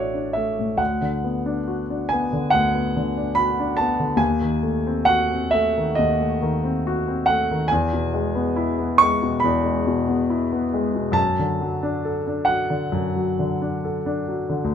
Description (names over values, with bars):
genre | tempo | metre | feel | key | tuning
classical, romantic nocturne for solo piano | 69 BPM | 4/4 | rubato | unclear | A4 = 440 Hz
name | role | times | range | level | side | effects
warm concert grand piano | solo | 0.0-14.7 s | A1 to C#6 | -19 LUFS | equal | none
room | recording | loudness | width
little or no reverb | close, detailed microphones | -19 LUFS | side -8 dB against mid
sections
0.0-14.7 A section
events
none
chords
0.0 D/A; 0.8 Bm/D; 4.2 D#dim7; 7.7 E; 11.2 D/F#